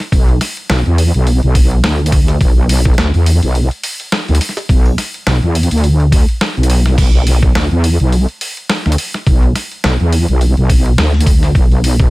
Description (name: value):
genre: glitch hop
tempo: 105 BPM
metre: 4/4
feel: swing 56% on 16ths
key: B minor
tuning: A4 = 444 Hz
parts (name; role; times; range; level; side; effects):
- boom bap sampler-style drum kit; drums; 0.0-12.1 s; crash cymbal, hi-hat, snare drum; -19 LUFS; equal; none
- wobble bass; bass; 0.1-12.1 s; B1 to E2; -11 LUFS; equal; chorus, overdrive
- electronic kick drum; drums; 0.1-12.1 s; none; -11 LUFS; equal; none
room: little or no reverb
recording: none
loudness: -10 LUFS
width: side -21 dB against mid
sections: 0.0-12.1 A section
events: kick drops out 6.4-7.0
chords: none